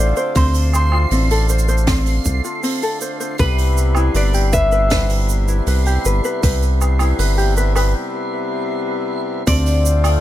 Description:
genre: folktronica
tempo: 79 BPM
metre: 4/4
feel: straight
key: unclear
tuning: A4 = 440 Hz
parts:
  - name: mandolin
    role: melody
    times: 0.0-10.2 s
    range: B4 to E5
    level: -23 LUFS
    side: left 2 dB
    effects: ping-pong delay
  - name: hand-pumped harmonium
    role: sustained chords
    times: 0.0-10.2 s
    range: C3 to F4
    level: -24 LUFS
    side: left 2 dB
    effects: stereo widening
  - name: ukulele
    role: arpeggios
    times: 0.0-10.2 s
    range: C4 to C5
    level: -24 LUFS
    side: left 1 dB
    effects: ping-pong delay
  - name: round analog bass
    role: bass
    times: 0.0-10.2 s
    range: G1 to D2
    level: -16 LUFS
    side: equal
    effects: none
  - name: backwards swelling texture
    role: texture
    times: 0.0-8.0 s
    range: C7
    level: -31 LUFS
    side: right 1 dB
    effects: built-in reverb
  - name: jazz brush drum kit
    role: drums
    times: 0.2-10.2 s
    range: hi-hat, shaker, snare drum, woodblock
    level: -26 LUFS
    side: right 4 dB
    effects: none
  - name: electronic kick drum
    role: drums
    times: 0.4-9.6 s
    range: none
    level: -18 LUFS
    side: equal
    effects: none
room: small room ambience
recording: none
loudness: -15 LUFS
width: side -13 dB against mid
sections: 0.0-9.5 A section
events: break 8.0-9.5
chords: 0.0 Dm7; 3.4 Cmaj7; 9.5 Dm7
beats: | 0.36 1.11 1.88 2.63 | 3.39 4.15 4.91 5.67 | 6.43 7.19 7.95 8.71 | 9.47

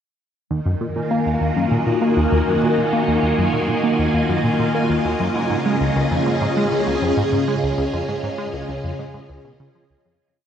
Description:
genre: ambient, sequencer-driven space music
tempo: 99 BPM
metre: 4/4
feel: straight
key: Eb minor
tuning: A4 = 436 Hz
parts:
  - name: phased string machine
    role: sustained chords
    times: 0.5-10.2 s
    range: Db3 to Eb5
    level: -19 LUFS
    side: equal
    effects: ensemble chorus, phaser
  - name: tight sequenced synth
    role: riff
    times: 0.5-10.2 s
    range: Db2 to Bb3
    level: -22 LUFS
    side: equal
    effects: chorus, vintage 12-bit sampler grit, tape echo
  - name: bubbling stepped-filter texture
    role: texture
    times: 1.0-10.2 s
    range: Ab5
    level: -30 LUFS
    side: right 3 dB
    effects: chorus, built-in reverb
room: wet huge ambient reverb, RT60 7.1 s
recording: dark, warm production, nothing above 11.0 kHz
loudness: -17 LUFS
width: side -8 dB against mid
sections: 0.5-10.2 A section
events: fade-out 7.0-10.2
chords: 0.5 Ebmadd9; 5.4 Dbadd9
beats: | 0.51 1.11 1.72 2.32 | 2.93 3.54 4.14 4.75 | 5.35 5.96 6.57 7.17 | 7.78 8.38 8.99 9.60

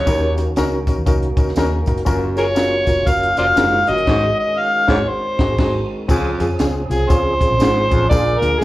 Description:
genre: uptempo 1960s-style soul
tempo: 119 BPM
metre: 4/4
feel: swing 61% on 8ths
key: Db major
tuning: A4 = 444 Hz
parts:
  - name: overdriven harmonica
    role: melody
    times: 0.0-8.6 s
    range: Ab4 to F5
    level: -17 LUFS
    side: equal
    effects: slapback echo
  - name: percussive tonewheel organ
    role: sustained chords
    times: 0.0-8.6 s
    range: Eb3 to Ab4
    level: -29 LUFS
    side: right 1 dB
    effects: slow rotary speaker, chorus vibrato
  - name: raspy baritone saxophone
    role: riff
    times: 0.0-8.5 s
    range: Eb2 to Bb2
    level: -23 LUFS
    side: right 2 dB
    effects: slapback echo
  - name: vintage muted fingered electric bass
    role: bass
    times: 0.0-8.6 s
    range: F1 to F2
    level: -22 LUFS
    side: equal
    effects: none
  - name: barky reed electric piano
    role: accompaniment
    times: 0.1-8.6 s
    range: Bb3 to Bb4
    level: -22 LUFS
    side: left 2 dB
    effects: overdrive, fast tremolo
  - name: compact cocktail drum kit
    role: drums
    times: 0.1-8.6 s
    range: crash cymbal, hi-hat, kick drum, snare drum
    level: -20 LUFS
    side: equal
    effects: none
  - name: tambourine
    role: percussion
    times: 0.1-8.5 s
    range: none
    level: -39 LUFS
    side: right 1 dB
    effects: none
room: light reverb, small room ambience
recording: live gig heard through the venue's PA, club ambience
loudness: -14 LUFS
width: side -16 dB against mid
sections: 0.0-6.1 A section; 6.1-8.6 B section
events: band accent 4.1-6.1; harmonica solo 6.1-8.6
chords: 0.1 Ebm7; 2.1 Gbmaj7; 4.1 Ab7sus4; 5.1 Ab7; 6.1 Dbmaj7; 8.1 Bb7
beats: | 0.07 0.57 1.07 1.57 | 2.07 2.58 3.08 3.58 | 4.08 4.59 5.09 5.59 | 6.10 6.60 7.11 7.62 | 8.12 8.63

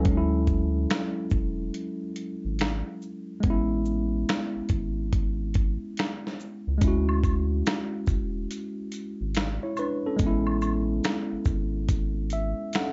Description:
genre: lo-fi hip hop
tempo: 71 BPM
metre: 4/4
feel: swing 64% on 16ths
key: A major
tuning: A4 = 440 Hz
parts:
  - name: tine electric piano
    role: accompaniment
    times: 0.0-12.9 s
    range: F#3 to F#5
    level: -32 LUFS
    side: equal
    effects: cassette tape
  - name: round analog bass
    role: bass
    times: 0.0-12.5 s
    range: E1 to D2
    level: -31 LUFS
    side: equal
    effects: none
  - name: dusty soul sampler-style drum kit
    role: drums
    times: 0.0-12.9 s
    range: finger snaps, hi-hat, kick drum, shaker, snare drum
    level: -29 LUFS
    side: equal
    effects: none
  - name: maracas and woodblock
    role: percussion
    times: 6.8-12.9 s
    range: none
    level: -40 LUFS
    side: equal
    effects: none
room: light reverb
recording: nothing above 7.8 kHz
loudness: -27 LUFS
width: mono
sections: 0.0-12.9 A section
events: none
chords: 0.1 Dmaj9#11; 3.4 Amaj9; 6.8 Dmaj9#11; 10.2 Amaj9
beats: | 0.06 0.90 1.75 2.59 | 3.44 4.28 5.13 5.97 | 6.82 7.66 8.51 9.35 | 10.20 11.04 11.89 12.73

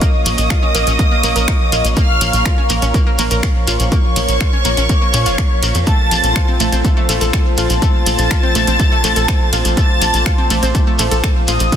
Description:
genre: melodic techno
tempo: 123 BPM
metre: 4/4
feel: straight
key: Bb harmonic minor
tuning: A4 = 440 Hz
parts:
  - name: mellow synth brass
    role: melody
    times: 0.0-11.8 s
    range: Db5 to A5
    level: -22 LUFS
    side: left 1 dB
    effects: chorus, phaser, sidechain pumping, digital delay
  - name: bright studio violin section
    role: second line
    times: 0.0-11.8 s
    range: Db6 to A6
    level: -23 LUFS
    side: equal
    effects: sidechain pumping, digital delay
  - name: dark analog pad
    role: sustained chords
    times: 0.0-11.8 s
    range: F3 to Db5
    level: -26 LUFS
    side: right 2 dB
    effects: chorus, vintage 12-bit sampler grit, sidechain pumping
  - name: analog pluck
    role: arpeggios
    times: 0.0-11.8 s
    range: A3 to Bb5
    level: -24 LUFS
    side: equal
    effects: chorus, sidechain pumping, digital delay
  - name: overtone-sweeping drone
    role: drone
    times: 0.0-11.8 s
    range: Bb2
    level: -30 LUFS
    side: left 1 dB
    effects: none
  - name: electronic kick drum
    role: drums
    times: 0.0-11.8 s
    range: none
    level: -16 LUFS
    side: equal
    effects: none
  - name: punchy analog drum machine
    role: drums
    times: 0.0-11.8 s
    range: finger snaps, hi-hat, ride cymbal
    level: -23 LUFS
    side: right 1 dB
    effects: sidechain pumping on hats, sidechain pumping on cymbals, soft clipping on snare
  - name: shekere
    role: percussion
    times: 0.0-11.8 s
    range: none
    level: -23 LUFS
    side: left 2 dB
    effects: none
  - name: warbly tape-like pad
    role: texture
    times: 0.0-11.8 s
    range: F4 to Db6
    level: -24 LUFS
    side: left 1 dB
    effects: chorus, built-in reverb, sidechain pumping
  - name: tight sequencer bass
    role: bass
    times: 0.3-11.7 s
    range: F1 to Bb2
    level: -18 LUFS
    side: equal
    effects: sidechain pumping
room: light reverb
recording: dense, heavily limited modern master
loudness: -12 LUFS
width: side -9 dB against mid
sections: 0.0-11.8 A section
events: none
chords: 0.0 Bbm; 5.9 F/Bb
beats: | 0.02 0.50 0.99 1.48 | 1.97 2.46 2.94 3.43 | 3.92 4.41 4.89 5.38 | 5.87 6.36 6.85 7.33 | 7.82 8.31 8.80 9.29 | 9.77 10.26 10.75 11.24 | 11.72

